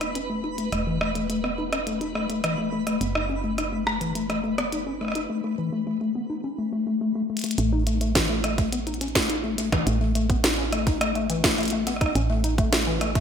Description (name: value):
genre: IDM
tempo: 105 BPM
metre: 4/4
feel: straight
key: unclear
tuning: A4 = 441 Hz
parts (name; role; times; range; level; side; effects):
- deep acid bass; arpeggios; 0.0-13.2 s; E3 to D#4; -26 LUFS; left 4 dB; lush chorus, cassette tape, digital delay
- woody FM bass; bass; 0.0-13.2 s; E1 to A1; -29 LUFS; right 1 dB; tube saturation
- glitchy drum kit; drums; 0.0-13.2 s; hi-hat, percussion blips, rim click, snare drum; -26 LUFS; right 2 dB; digital delay
- twinkling granular texture; texture; 0.0-5.3 s; B4; -38 LUFS; right 2 dB; built-in reverb, wide subtle chorus
- electronic kick drum; drums; 8.2-13.2 s; none; -26 LUFS; right 1 dB; none
room: wet plate reverb, RT60 2.3 s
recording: bright 1980s-style digital production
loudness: -22 LUFS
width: side -8 dB against mid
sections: 0.0-7.6 A section; 7.6-13.2 B section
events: drum fill 7.3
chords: 0.0 E5; 3.0 F#m; 7.6 N.C.